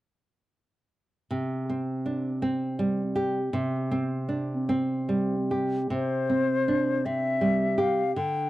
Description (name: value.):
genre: romantic duo for flute and classical guitar.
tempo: 47-55 BPM (dotted quarters).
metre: 6/8.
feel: rubato.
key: C major.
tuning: A4 = 440 Hz.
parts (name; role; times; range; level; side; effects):
nylon-string guitar; accompaniment; 1.3-8.5 s; C3 to G4; -26 LUFS; right 1 dB; none.
mellow silver concert flute; melody; 5.9-8.5 s; C5 to G5; -27 LUFS; left 4 dB; none.
room: light reverb.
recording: dry, close 1970s-style studio recording.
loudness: -25 LUFS.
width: side -16 dB against mid.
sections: 1.3-5.9 A section; 5.9-8.5 B section.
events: none.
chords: 1.3 C5.